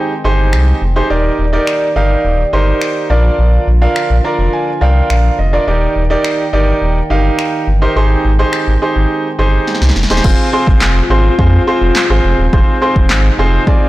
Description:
dance-pop; 105 BPM; 4/4; straight; A4 = 442 Hz
clear grand piano; accompaniment; 0.0-13.9 s; C4 to Bb5; -15 LUFS; right 2 dB; sidechain pumping
mellow brass ensemble; sustained chords; 0.0-13.9 s; C3 to G5; -21 LUFS; equal; sidechain pumping
sub bass with octave; bass; 0.2-13.6 s; Eb1 to F2; -12 LUFS; equal; tube saturation, sidechain pumping
deep house drum kit; drums; 0.5-13.8 s; crash cymbal, finger snaps, handclaps, kick drum, snare drum; -15 LUFS; equal; soft clipping on snare
light reverb; blown-out, overdriven recording, overdrive; -10 LUFS; side -17 dB against mid
0.0-10.2 A section; 10.2-13.9 B section
grand piano fill 4.0-5.7; drum fill 9.7-10.2
0.0 Abmaj7; 1.1 Ebmaj7; 3.1 Bb; 5.7 Ebmaj7; 8.0 Abmaj7; 10.2 Fm

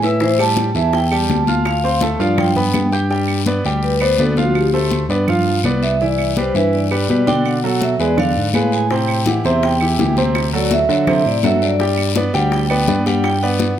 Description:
Afro-Cuban jazz; 166 BPM; 4/4; straight; G major from 3.1 s; A4 = 440 Hz
vibraphone with medium hard mallets; melody; 0.0-13.8 s; F#4 to A5; -20 LUFS; equal
clear grand piano; accompaniment; 0.0-13.7 s; C3 to G6; -20 LUFS; right 2 dB
barky tine electric piano; bass; 0.0-13.7 s; C2 to D3; -19 LUFS; equal
bongos; percussion; 0.0-3.1, 8.9-13.8 s; -27 LUFS; left 6 dB
congas; percussion; 0.0-13.8 s; -24 LUFS; left 3 dB
guiro; percussion; 0.0-13.8 s; -29 LUFS; left 9 dB
claves; percussion; 0.4-13.4 s; -31 LUFS; right 7 dB
light reverb; -14 LUFS; side -10 dB against mid
0.0-3.1 A section; 3.1-13.8 B section
vibraphone solo 3.1-13.8
0.2 A5; 1.7 Dm7; 2.4 G7; 3.1 G; 4.6 Dm7; 5.3 G7; 6.0 Cmaj9; 7.5 Bm7; 8.2 E7b9; 8.9 Am7; 10.3 D9; 11.8 Gmaj7

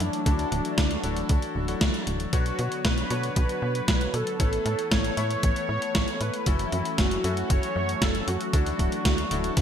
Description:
italo disco; 116 BPM; 4/4; straight; B minor; A4 = 441 Hz
wide unison lead; melody; 0.0-9.6 s; D4 to C#5; -30 LUFS; equal; lush chorus, ping-pong delay
warm analog pad; sustained chords; 0.0-9.6 s; D3 to C#5; -33 LUFS; left 1 dB; chorus
bright electric grand piano; stabs; 0.0-9.6 s; C#4 to C#5; -35 LUFS; left 3 dB; wide subtle chorus
tight sequencer bass; bass; 0.0-9.6 s; D1 to B2; -29 LUFS; equal
clean 12-bit digital drum machine; drums; 0.0-9.6 s; hi-hat, snare drum; -29 LUFS; equal; gated reverb
electronic kick drum; drums; 0.3-9.6 s; -25 LUFS; equal
moderate lush hall reverb, RT60 1.8 s, digital ambience; bright 1980s-style digital production; -23 LUFS; side -8 dB against mid
0.0-9.6 A section
0.3 Dadd9; 2.3 Bmadd9; 4.4 Aadd9; 6.5 F#m7; 8.5 Dadd9

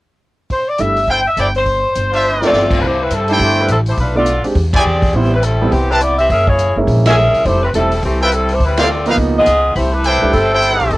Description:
jazz, big band swing; 208 BPM; 4/4; swing 61% on 8ths; C major; A4 = 440 Hz
bright saxophone section; melody; 0.5-11.0 s; E3 to G5; -15 LUFS; left 1 dB; cassette tape
swinging big-band drum kit; drums; 0.5-11.0 s; crash cymbal, hi-hat, kick drum, ride cymbal, snare drum; -22 LUFS; equal
clear upright piano; accompaniment; 0.8-10.3 s; F3 to E5; -18 LUFS; right 2 dB; cassette tape
upright bass; bass; 0.8-11.0 s; E1 to G2; -17 LUFS; equal
brilliant trumpet section; stabs; 1.1-10.9 s; D4 to A5; -15 LUFS; right 1 dB; cassette tape
moderate booth ambience, RT60 0.2 s; home recording on cassette; -12 LUFS; side -19 dB against mid
0.5-2.8 A section; 2.8-11.0 B section
drum fill 2.2; band accent 4.7, 7.0, 8.8
0.5 C6/G; 1.7 Dm9; 2.8 C6; 4.0 Bm7b5; 4.6 E7alt; 5.1 Am9; 6.3 F#9; 7.5 Fmaj9; 8.6 Dm9; 9.2 Db13; 9.8 C6

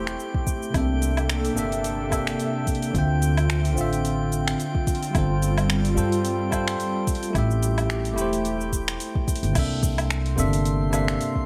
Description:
sunset chillout; 109 BPM; 4/4; swing 56% on 16ths; A4 = 439 Hz
bell-like tine electric piano; accompaniment; 0.0-11.5 s; C3 to G5; -30 LUFS; equal; delay
airy breathy pad; sustained chords; 0.0-9.5 s; C3 to E5; -32 LUFS; equal; chorus
upright bass; bass; 0.0-11.1 s; E1 to G2; -27 LUFS; equal; tube saturation
drifting glass-harmonics texture; texture; 0.0-11.5 s; G5 to C6; -39 LUFS; equal; chorus, built-in reverb
deep house drum kit; drums; 0.1-11.3 s; crash cymbal, finger snaps, hi-hat, shaker, woodblock; -33 LUFS; equal; overdrive
electronic kick drum; drums; 0.3-11.5 s; -28 LUFS; equal
light reverb; -24 LUFS; mono
0.0-9.6 A section; 9.6-11.5 B section
0.0 Am7; 0.7 C13; 2.9 Dm9; 5.1 G9sus4; 7.3 Am7; 9.6 C13

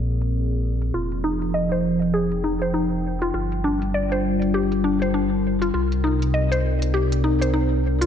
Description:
organic downtempo; 100 BPM; 4/4; swing 59% on 16ths; F dorian; A4 = 435 Hz
warbly tape-like pad; sustained chords; 0.0-8.1 s; Bb2 to G5; -23 LUFS; left 1 dB; chorus, built-in reverb
warm sub bass; bass; 0.0-8.1 s; F1 to C2; -25 LUFS; equal; tube saturation
bronze singing bowl; texture; 0.0-8.1 s; Bb4; -47 LUFS; right 10 dB
electronic hi-hat; drums; 0.2-8.1 s; -38 LUFS; right 2 dB
mallet-like synth pluck; arpeggios; 0.9-8.1 s; D4 to Eb5; -24 LUFS; left 1 dB; chorus, digital delay
moderate lush hall reverb, RT60 1.8 s; dark, warm production, low-pass filter; -20 LUFS; side -8 dB against mid
0.0-8.1 A section
filter sweep on ambient pad 0.0-8.1; filter sweep 0.0-8.1
0.0 Bb7; 0.9 Fm7; 3.3 Gm7; 5.7 Cm7

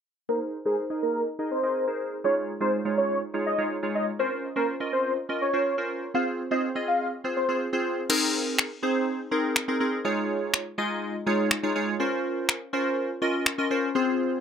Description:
dance-pop; 123 BPM; 4/4; straight; Ab major; A4 = 440 Hz
wide unison lead; melody; 0.3-7.6 s; Ab4 to F5; -26 LUFS; equal; low-pass filter
glassy digital keys; accompaniment; 0.3-14.4 s; Ab3 to Eb5; -26 LUFS; equal; chorus, low-pass filter
smooth R&B drum kit; drums; 8.1-13.6 s; crash cymbal, finger snaps; -23 LUFS; left 2 dB
moderate booth ambience, RT60 0.3 s; -24 LUFS; side -8 dB against mid
0.3-8.1 A section; 8.1-14.4 B section
filter sweep 0.3-8.1
0.3 Abadd9; 2.2 Dbadd9/Ab; 4.2 Bbmadd9; 6.1 Fm; 8.1 Abadd9; 10.0 Dbadd9/Ab; 12.0 Bbmadd9

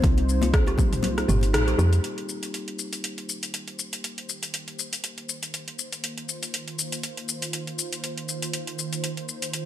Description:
afro house; 120 BPM; 4/4; swing 55% on 16ths; C minor; A4 = 440 Hz
warm analog pad; sustained chords; 0.0-9.7 s; Eb3 to C5; -35 LUFS; right 1 dB; chorus, sidechain pumping
woody FM bass; bass; 0.0-2.0 s; G1 to F2; -23 LUFS; equal; sidechain pumping
deep house drum kit; drums; 0.0-9.6 s; hi-hat, rim click, shaker, toms; -29 LUFS; left 1 dB; overdrive, studio reverb
electronic kick drum; drums; 0.0-0.9 s; -21 LUFS; equal; overdrive, studio reverb
congas; percussion; 0.0-1.9 s; -30 LUFS; left 6 dB
kalimba; arpeggios; 0.4-1.9 s; G3 to G4; -32 LUFS; left 1 dB; vintage 12-bit sampler grit, sidechain pumping, dub echo
light reverb; -24 LUFS; side -12 dB against mid
0.0-2.0 A section; 2.0-9.7 B section
kick drops out 1.0-2.0; band accent 1.5
0.0 Eb69; 2.0 Cm7

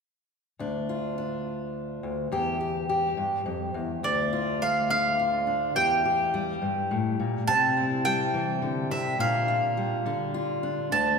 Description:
indie folk with a building arrangement; 70 BPM (dotted quarters); 6/8; straight; D minor; A4 = 439 Hz
fingerpicked steel-string acoustic guitar; accompaniment; 0.6-11.2 s; D2 to G4; -27 LUFS; left 2 dB
mandolin; melody; 4.0-11.2 s; D5 to A5; -26 LUFS; right 2 dB
wet church reverb, RT60 3.2 s; recorded in a church or concert hall; -24 LUFS; side -5 dB against mid
0.6-4.0 A section; 4.0-11.2 B section
0.6 Dm; 2.3 Em; 4.0 Dm; 5.8 Edim; 7.5 C; 9.2 Bb6

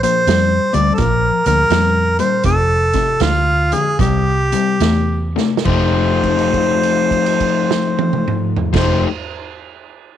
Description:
electric blues shuffle; 69-85 BPM; 4/4; swing 66% on 8ths; F mixolydian; A4 = 440 Hz
mellow harmonica; melody; 0.0-9.0 s; F4 to D5; -17 LUFS; right 1 dB
overdriven semi-hollow guitar; riff; 0.0-9.1 s; F2 to G4; -19 LUFS; left 9 dB
vintage muted fingered electric bass; bass; 0.0-9.0 s; F1 to F2; -18 LUFS; right 1 dB
vintage drum kit; drums; 0.0-8.9 s; crash cymbal, hi-hat, kick drum, snare drum, toms; -22 LUFS; right 5 dB
light reverb, small room ambience; 1960s-style stereo; -13 LUFS; side -10 dB against mid
0.0-5.7 A section; 5.7-9.2 B section
slowing down 0.0-5.7; drum fill 5.2-5.7; held note 5.7-8.6
0.0 Bbadd9; 2.4 F; 4.0 C; 5.7 F9

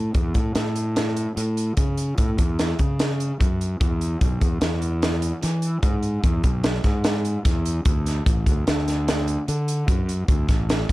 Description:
math rock and midwest emo; 148 BPM; 5/4; straight; A major; A4 = 442 Hz
fuzz fingered electric bass; bass; 0.0-10.9 s; A1 to E3; -23 LUFS; equal; overdrive
crisp fusion drum kit; drums; 0.1-10.9 s; hi-hat, kick drum, snare drum; -22 LUFS; equal
little or no reverb; dark, warm production; -20 LUFS; side -18 dB against mid
0.0-10.9 A section

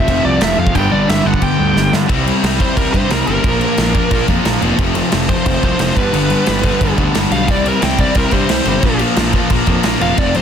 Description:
punk rock; 178 BPM; 4/4; straight; A4 = 440 Hz
biting lead guitar; melody; 0.0-10.4 s; Bb4 to G5; -19 LUFS; right 1 dB; overdrive
fuzz guitar; riff; 0.0-10.4 s; F2 to C4; -22 LUFS; equal; distortion
overdriven electric guitar; riff; 0.0-10.4 s; F2 to E4; -21 LUFS; right 13 dB
sludgy distorted guitar; riff; 0.0-10.4 s; F2 to C4; -19 LUFS; left 11 dB; overdrive
fuzz picked electric bass; bass; 0.0-10.4 s; F1 to G2; -20 LUFS; equal; overdrive
big rock drum kit; drums; 0.1-10.4 s; crash cymbal, kick drum, snare drum; -17 LUFS; equal
light reverb; dense, heavily limited modern master; -12 LUFS; side -8 dB against mid
0.0-2.1 A section; 2.1-10.4 B section
drum fill 1.8-2.1; lead electric guitar solo 2.1-10.4
0.0 F; 0.7 G; 2.1 C; 3.4 Bb; 4.8 F; 6.0 G; 7.5 C; 8.8 Bb

